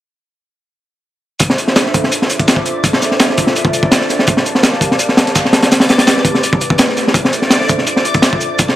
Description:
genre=drum and bass, jungle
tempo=167 BPM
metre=4/4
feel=swing 53% on 16ths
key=D minor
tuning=A4 = 440 Hz
part: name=airy breathy pad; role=sustained chords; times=1.5-8.8 s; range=A3 to A5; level=-19 LUFS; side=equal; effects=chorus
part: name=crunchy breakbeat drum kit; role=drums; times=1.4-8.8 s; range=hi-hat, kick drum, snare drum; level=-11 LUFS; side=equal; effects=high-pass filter on kick, high-pass filter on hats, high-pass filter on snare, high-pass filter on room
part: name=dusty soul sampler-style drum kit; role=drums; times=1.4-8.8 s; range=hi-hat, shaker, snare drum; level=-21 LUFS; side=right 1 dB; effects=high-pass filter on perc, high-pass filter on snare, high-pass filter on hats, high-pass filter on room
part: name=backwards swelling texture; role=texture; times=2.4-8.8 s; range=D5 to D6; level=-23 LUFS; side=left 1 dB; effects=built-in reverb
room=light reverb, small room ambience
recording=none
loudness=-10 LUFS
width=side -14 dB against mid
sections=1.4-8.8 A section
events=none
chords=1.4 Dm9; 4.3 Gm9; 5.7 Am9; 7.2 Dm9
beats=| 1.40 1.76 2.12 2.48 | 2.84 3.20 3.56 3.92 | 4.28 4.64 5.00 5.35 | 5.71 6.07 6.43 6.79 | 7.15 7.51 7.87 8.23 | 8.59

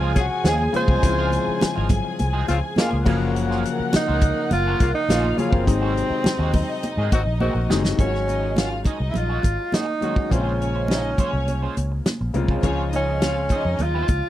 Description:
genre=lush 1970s-style soul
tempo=103 BPM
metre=4/4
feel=straight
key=Db major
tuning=A4 = 440 Hz
part: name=warm tenor saxophone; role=melody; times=0.0-14.3 s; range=C4 to C5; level=-25 LUFS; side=right 2 dB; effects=none
part: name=dark symphonic string section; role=second line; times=0.0-14.1 s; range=C4 to Ab5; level=-30 LUFS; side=left 2 dB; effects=none
part: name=clear concert grand piano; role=accompaniment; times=0.0-14.3 s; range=C3 to C5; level=-28 LUFS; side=left 6 dB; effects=none
part: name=electric guitar at the edge of break-up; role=riff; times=0.0-14.3 s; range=Eb3 to Eb5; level=-32 LUFS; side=right 8 dB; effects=wah
part: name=vintage muted fingered electric bass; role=bass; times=0.0-14.2 s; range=Gb1 to Ab2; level=-24 LUFS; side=equal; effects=none
part: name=warm horn section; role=stabs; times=0.2-8.0 s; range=Db3 to Ab4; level=-28 LUFS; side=left 5 dB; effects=none
part: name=warm soul drum kit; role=drums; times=0.2-14.2 s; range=crash cymbal, hi-hat, kick drum, snare drum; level=-21 LUFS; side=equal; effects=none
part: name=congas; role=percussion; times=0.2-14.2 s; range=none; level=-30 LUFS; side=right 2 dB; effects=none
room=little or no reverb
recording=dry, close 1970s-style studio recording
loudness=-19 LUFS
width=side -13 dB against mid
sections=0.0-8.0 A section; 8.0-14.3 B section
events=drum fill 7.4-8.0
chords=0.0 Dbmaj7; 3.1 Gbmaj7; 5.7 Ab7; 8.0 Ab7sus4; 10.3 Bbm9; 12.6 Dbmaj7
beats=0.45 | 1.02 1.61 2.19 2.77 | 3.35 3.93 4.51 5.09 | 5.67 6.25 6.83 7.41 | 7.99 8.57 9.15 9.73 | 10.31 10.89 11.47 12.06 | 12.64 13.22 13.80

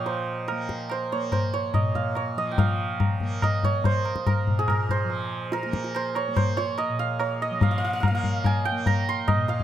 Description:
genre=indian classical, Hindustani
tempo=143 BPM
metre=3/4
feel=straight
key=Bb raga kafi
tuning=A4 = 440 Hz
part: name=santur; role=melody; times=0.0-9.6 s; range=Ab4 to C6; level=-27 LUFS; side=right 3 dB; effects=none
part: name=tanpura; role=drone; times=0.0-9.6 s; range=Bb2 to Bb3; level=-32 LUFS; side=right 2 dB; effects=none
part: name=tabla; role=percussion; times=0.1-9.6 s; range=none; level=-25 LUFS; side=left 2 dB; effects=none
room=light reverb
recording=close, detailed microphones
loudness=-23 LUFS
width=side -11 dB against mid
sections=0.0-2.6 A section; 2.6-9.6 B section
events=none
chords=none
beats=| 0.06 0.48 0.90 | 1.32 1.75 2.17 | 2.58 3.00 3.42 | 3.85 4.26 4.68 | 5.10 5.52 5.94 | 6.36 6.78 7.20 | 7.61 8.03 8.45 | 8.87 9.28

